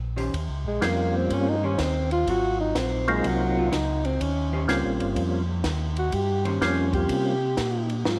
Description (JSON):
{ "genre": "soul jazz organ trio", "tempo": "124 BPM", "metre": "4/4", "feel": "swing 66% on 8ths", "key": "Eb mixolydian", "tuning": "A4 = 440 Hz", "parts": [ { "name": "mellow tonewheel organ", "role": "bass", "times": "0.0-8.2 s", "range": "G1 to C3", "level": "-30 LUFS", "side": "equal", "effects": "chorus vibrato, slow rotary speaker" }, { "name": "vintage hollow-body jazz guitar", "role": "accompaniment", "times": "0.2-8.2 s", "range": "Eb3 to C5", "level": "-34 LUFS", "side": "equal", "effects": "none" }, { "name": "compact cocktail drum kit", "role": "drums", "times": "0.2-8.2 s", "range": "hi-hat, kick drum, ride cymbal, snare drum", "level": "-35 LUFS", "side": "equal", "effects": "none" }, { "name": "breathy tenor saxophone", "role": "melody", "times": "0.7-7.9 s", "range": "Gb3 to G4", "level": "-29 LUFS", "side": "equal", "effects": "tape echo" }, { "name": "percussive tonewheel organ", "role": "melody", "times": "0.8-7.4 s", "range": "Gb3 to F4", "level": "-30 LUFS", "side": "equal", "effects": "chorus vibrato, slow rotary speaker, tape echo" } ], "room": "moderate plate reverb, RT60 2.1 s", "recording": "none", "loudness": "-25 LUFS", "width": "mono", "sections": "0.3-8.2 A section", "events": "tenor saxophone solo 0.3-8.2", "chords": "0.3 Eb13; 2.3 Ab13; 4.2 Eb13", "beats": "| 0.34 0.82 1.30 1.79 | 2.27 2.75 3.23 3.72 | 4.20 4.68 5.17 5.65 | 6.13 6.61 7.09 7.58 | 8.06" }